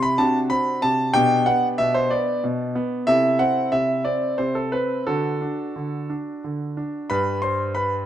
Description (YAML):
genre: classical-period piano sonatina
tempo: 60 BPM (dotted quarters)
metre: 6/8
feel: uneven beats, rubato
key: G major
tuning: A4 = 441 Hz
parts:
  - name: clear concert grand piano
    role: solo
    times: 0.0-8.1 s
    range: G2 to C6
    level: -20 LUFS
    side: equal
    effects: none
room: moderate recital hall reverb, RT60 1.7 s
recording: close, detailed microphones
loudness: -20 LUFS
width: side -11 dB against mid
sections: 0.0-7.1 A section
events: none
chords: 0.2 D7/C; 1.2 G/B; 3.1 Am/C; 5.1 D; 7.1 G